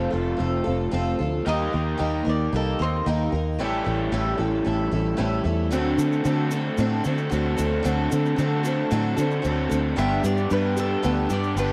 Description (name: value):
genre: folk rock and heartland rock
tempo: 113 BPM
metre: 4/4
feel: straight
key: unclear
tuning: A4 = 440 Hz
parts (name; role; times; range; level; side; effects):
- picked twelve-string acoustic guitar; accompaniment; 0.0-11.7 s; G2 to Bb4; -28 LUFS; equal; cassette tape
- crunchy overdriven guitar; riff; 0.0-11.7 s; F2 to A4; -30 LUFS; equal; cassette tape
- fingered electric bass; bass; 0.0-11.7 s; F1 to D3; -28 LUFS; equal; none
- bowl-back mandolin; second line; 1.5-3.1, 10.0-11.7 s; C4 to E5; -32 LUFS; equal; cassette tape, analog delay
- tube shaker; percussion; 5.7-11.7 s; none; -44 LUFS; equal; none
room: light reverb, small room ambience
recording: home recording on cassette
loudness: -24 LUFS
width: mono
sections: 0.0-5.7 A section; 5.7-11.7 B section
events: none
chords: 0.0 F; 1.5 Eb; 3.6 A7; 5.7 D7; 10.0 G